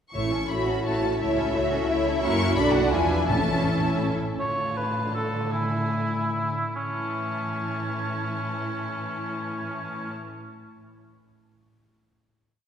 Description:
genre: classical, dramatic, fast romantic movement for symphony orchestra.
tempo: 136-174 BPM.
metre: 3/4.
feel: straight.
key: A major.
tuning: A4 = 441 Hz.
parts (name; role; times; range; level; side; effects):
warm symphonic violin section; melody; 0.1-10.1 s; E5 to C#6; -32 LUFS; left 4 dB; none.
warm symphonic violin section; second line; 0.1-10.1 s; E4 to E5; -33 LUFS; left 2 dB; none.
warm symphonic viola section; accompaniment; 0.1-10.1 s; D3 to F#4; -31 LUFS; right 2 dB; none.
mellow French horn section; sustained chords; 0.1-4.2 s; E3 to E4; -29 LUFS; left 2 dB; none.
warm studio double bass section; bass; 0.1-4.2 s; A1 to F#2; -30 LUFS; right 1 dB; none.
timpani; percussion; 0.1-0.6, 3.3-3.8 s; A2; -33 LUFS; left 1 dB; none.
dark symphonic cello section; bass; 0.5-10.1 s; A2 to F#4; -31 LUFS; equal; none.
warm cor anglais; second line; 4.4-10.1 s; C#4 to C#5; -29 LUFS; equal; none.
room: wet concert hall reverb, RT60 2.4 s.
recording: heard from further back in the room.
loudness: -23 LUFS.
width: side -8 dB against mid.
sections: 0.1-4.4 A section; 4.4-6.8 coda; 6.8-9.4 final chord.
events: slowing down 3.8-6.8.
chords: 0.1 A; 1.2 A/C#; 2.2 F#7; 2.6 Bm7; 2.9 E7b9; 3.3 A; 4.4 Dm/A; 6.8 A.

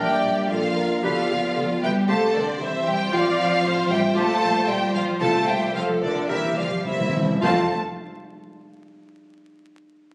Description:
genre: quick classical-period movement for symphony orchestra.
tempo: 112 BPM.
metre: 4/4.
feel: uneven beats, rubato.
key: F major.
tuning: A4 = 440 Hz.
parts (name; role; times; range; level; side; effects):
rich studio violin section; melody; 0.0-7.7 s; D5 to A5; -28 LUFS; equal; none.
mellow hollow concert flute; second line; 0.0-7.7 s; Bb4 to F5; -31 LUFS; equal; none.
warm clarinet; second line; 0.0-7.7 s; D4 to G4; -31 LUFS; equal; none.
warm oboe; second line; 0.0-7.7 s; G4 to C5; -35 LUFS; equal; none.
warm studio violin section; second line; 0.0-7.7 s; D4 to A5; -32 LUFS; equal; none.
rich studio viola section; accompaniment; 0.0-7.8 s; C4 to D5; -32 LUFS; equal; none.
mellow French horn section; sustained chords; 0.0-7.7 s; G3 to G4; -32 LUFS; equal; none.
rich studio double bass section; bass; 0.0-7.7 s; A1 to F2; -36 LUFS; equal; none.
warm studio cello section; bass; 0.0-7.7 s; D3 to A3; -30 LUFS; equal; none.
timpani; percussion; 5.2-7.7 s; F2 to C3; -33 LUFS; equal; none.
room: moderate scoring stage reverb, RT60 1.6 s.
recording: recorded on a phone in the room, club reverb, vinyl crackle, compression.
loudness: -22 LUFS.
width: mono.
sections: 0.0-7.4 A section; 7.4-9.7 B section.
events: timpani fill 6.3-7.4.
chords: 0.0 Bb; 1.0 G7/D; 2.1 C; 3.1 F/A; 4.2 Gm7/Bb; 5.2 F/C; 6.3 C7; 7.4 F.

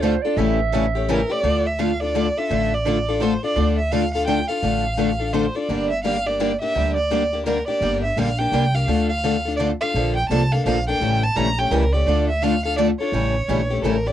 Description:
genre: acoustic string swing (jazz manouche).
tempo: 169 BPM.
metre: 3/4.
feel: swing 62% on 8ths.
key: D minor.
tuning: A4 = 440 Hz.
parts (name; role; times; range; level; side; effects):
breathy clarinet; second line; 0.0-1.4 s; C5 to E5; -25 LUFS; right 9 dB; cassette tape.
picked steel-string acoustic guitar; accompaniment; 0.0-14.1 s; C#3 to A4; -23 LUFS; left 7 dB; cassette tape.
picked steel-string acoustic guitar; accompaniment; 0.0-14.0 s; D3 to A4; -26 LUFS; right 8 dB; cassette tape.
upright bass; bass; 0.0-14.1 s; G1 to D2; -24 LUFS; right 1 dB; none.
rich violin; melody; 1.1-14.1 s; A4 to Bb5; -23 LUFS; right 1 dB; none.
room: moderate booth ambience, RT60 0.2 s.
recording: home recording on cassette.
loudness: -18 LUFS.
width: side -11 dB against mid.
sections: 0.0-1.4 A section; 1.4-14.1 B section.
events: clarinet solo 0.0-1.4.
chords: 0.4 A7; 1.4 Dm; 5.7 Gm; 8.9 Dm; 9.9 Bbmaj7; 11.0 A7b9; 12.1 Dm; 13.1 A7b9.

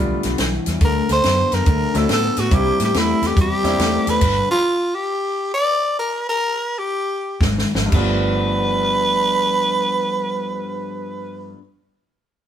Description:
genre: electric blues shuffle.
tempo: 113-141 BPM.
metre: 4/4.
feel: swing 65% on 8ths.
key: G mixolydian.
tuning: A4 = 440 Hz.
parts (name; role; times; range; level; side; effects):
clear upright piano; accompaniment; 0.0-4.2, 7.9-11.6 s; G2 to F4; -27 LUFS; right 2 dB; none.
electric guitar through a small old amp; riff; 0.0-4.5, 7.4-11.6 s; G2 to D4; -23 LUFS; left 3 dB; none.
vintage muted fingered electric bass; bass; 0.0-4.4, 7.4-11.5 s; G1 to A2; -24 LUFS; equal; none.
compact cocktail drum kit; drums; 0.2-4.3, 7.4-8.1 s; crash cymbal, hi-hat, kick drum, snare drum; -20 LUFS; equal; none.
growling tenor saxophone; melody; 0.8-11.5 s; E4 to D5; -19 LUFS; right 1 dB; none.
room: moderate stone room reverb, RT60 1.0 s.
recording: band playing live in one room.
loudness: -16 LUFS.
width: side -9 dB against mid.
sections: 0.0-7.9 A section; 7.9-12.2 B section.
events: slowing down 4.2-7.9; stop 4.2-7.4; drum fill 7.4-7.9.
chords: 0.0 G7; 0.8 D7; 2.5 C7; 4.2 G5; 7.4 Ab5; 7.9 G7.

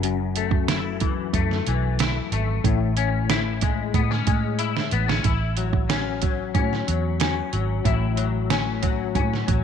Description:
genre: indie pop, bedroom pop.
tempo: 92 BPM.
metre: 4/4.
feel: straight.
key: A major.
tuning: A4 = 441 Hz.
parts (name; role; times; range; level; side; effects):
semi-hollow electric guitar; accompaniment; 0.0-9.6 s; F#2 to E4; -25 LUFS; left 11 dB; ensemble chorus, vibrato effect.
vintage muted fingered electric bass; bass; 0.0-9.6 s; F#1 to A2; -25 LUFS; right 1 dB; none.
lo-fi sampler-style drum kit; drums; 0.0-9.6 s; hi-hat, kick drum, snare drum; -24 LUFS; right 5 dB; none.
room: light reverb.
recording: 1960s-style stereo.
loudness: -21 LUFS.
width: side -8 dB against mid.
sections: 0.0-5.2 A section; 5.2-9.6 B section.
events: drum fill 4.6-5.2.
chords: 0.0 F#m7; 2.6 Amaj7; 5.2 A6.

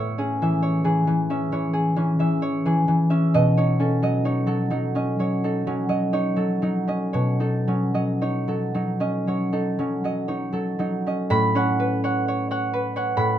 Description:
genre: classical, solo harp piece.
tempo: 55-67 BPM.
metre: 4/4.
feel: rubato.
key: A lydian.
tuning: A4 = 440 Hz.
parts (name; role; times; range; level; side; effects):
concert harp; solo; 0.0-13.4 s; A2 to B5; -20 LUFS; equal; none.
room: moderate large studio reverb, RT60 0.9 s.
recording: minimal, uncompressed stereo recording.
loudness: -20 LUFS.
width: side -11 dB against mid.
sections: 0.0-11.3 A section; 11.3-13.4 B section.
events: none.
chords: 0.0 Amaj7; 3.4 B9; 11.3 A69.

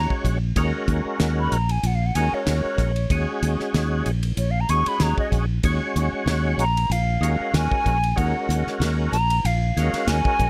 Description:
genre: electric jazz fusion.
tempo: 95 BPM.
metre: 4/4.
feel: swing 54% on 16ths.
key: Eb minor.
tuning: A4 = 438 Hz.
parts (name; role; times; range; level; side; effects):
hollow concert flute; melody; 0.0-10.5 s; Db5 to Db6; -27 LUFS; equal; slapback echo.
percussive tonewheel organ; accompaniment; 0.0-10.5 s; Ab3 to Db5; -29 LUFS; equal; slow rotary speaker, overdrive, chorus vibrato.
fingered electric bass; bass; 0.0-10.5 s; Bb1 to Eb2; -25 LUFS; equal; none.
damped 70s drum kit; drums; 0.1-10.5 s; hi-hat, kick drum, ride cymbal, snare drum; -30 LUFS; equal; none.
room: little or no reverb.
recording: none.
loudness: -22 LUFS.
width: mono.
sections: 0.0-10.5 A section.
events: flute solo 0.0-10.5.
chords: 0.0 Ebm7.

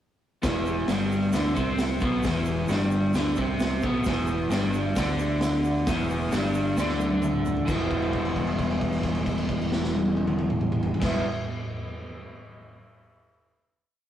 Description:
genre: garage rock duo or trio.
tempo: 133 BPM.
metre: 4/4.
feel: straight.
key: E minor.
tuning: A4 = 439 Hz.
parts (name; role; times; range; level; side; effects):
crunchy overdriven guitar; riff; 0.4-11.2 s; E2 to E4; -26 LUFS; equal; spring reverb.
growling fingered electric bass; bass; 0.4-11.2 s; E1 to D2; -31 LUFS; equal; overdrive.
raw garage drum kit; drums; 0.4-11.1 s; crash cymbal, hi-hat, kick drum, snare drum, toms; -29 LUFS; equal; none.
egg shaker; percussion; 0.4-7.9 s; none; -51 LUFS; right 4 dB; none.
room: moderate stone room reverb, RT60 1.1 s.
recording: rough rehearsal-room recording, warm saturation.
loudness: -23 LUFS.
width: side -11 dB against mid.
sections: 0.4-7.7 riff; 7.7-11.3 final chord.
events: drum fill 6.8-7.7; held note 7.7-11.0.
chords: 0.4 Em.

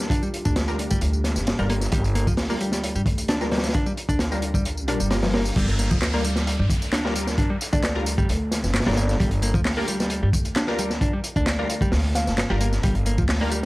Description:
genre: breakbeat, breaks.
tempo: 132 BPM.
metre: 4/4.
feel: straight.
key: G minor.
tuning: A4 = 440 Hz.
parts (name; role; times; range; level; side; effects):
dark analog pad; sustained chords; 0.0-5.5 s; G3 to G4; -37 LUFS; equal; none.
orchestra-hit-like synth stab; stabs; 0.0-13.5 s; G3 to Bb4; -31 LUFS; left 1 dB; built-in reverb, phaser, vintage 12-bit sampler grit, tape echo.
upright bass; bass; 0.0-13.7 s; G1 to G2; -25 LUFS; equal; transformer saturation.
crunchy breakbeat drum kit; drums; 0.0-13.6 s; crash cymbal, hi-hat, kick drum, snare drum; -24 LUFS; equal; none.
electronic tambourine and handclaps; drums; 0.0-13.6 s; none; -32 LUFS; left 1 dB; none.
modern bright picked electric bass; riff; 0.1-13.6 s; F3 to D4; -28 LUFS; equal; tape echo.
swell and downlifter; sound effects; 4.8-9.2 s; none; -36 LUFS; equal; none.
mallet-like synth pluck; melody; 7.7-12.6 s; D5 to F5; -33 LUFS; equal; chorus, phaser, old record sound, tape echo.
room: small room ambience.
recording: dry, gritty hardware recording, vinyl crackle.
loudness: -20 LUFS.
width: side -20 dB against mid.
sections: 0.0-5.6 A section; 5.6-13.7 B section.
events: kick drops out 4.7-5.6; drop 5.6-13.7.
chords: 0.0 Gm7.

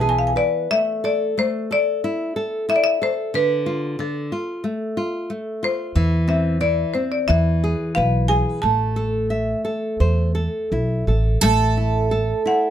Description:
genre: fado-style ballad.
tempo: 82-94 BPM.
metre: 4/4.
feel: rubato.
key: A harmonic minor.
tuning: A4 = 439 Hz.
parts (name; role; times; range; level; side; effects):
marimba with medium hard mallets; melody; 0.0-12.7 s; A4 to A5; -21 LUFS; left 1 dB; none.
picked twelve-string acoustic guitar; second line; 0.0-0.3, 11.4-12.7 s; A4 to B4; -23 LUFS; right 5 dB; none.
nylon-string guitar; accompaniment; 0.0-12.7 s; D3 to E5; -24 LUFS; left 1 dB; none.
upright bass; bass; 0.0-0.3, 6.0-12.3 s; A1 to E2; -20 LUFS; equal; none.
room: little or no reverb.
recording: close, detailed microphones.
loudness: -18 LUFS.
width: side -10 dB against mid.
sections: 0.7-11.4 A section; 11.4-12.7 B section.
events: none.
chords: 0.0 E; 0.7 A5; 3.3 Dm; 6.0 Cadd9/E; 7.3 E; 8.6 Am; 11.4 A5.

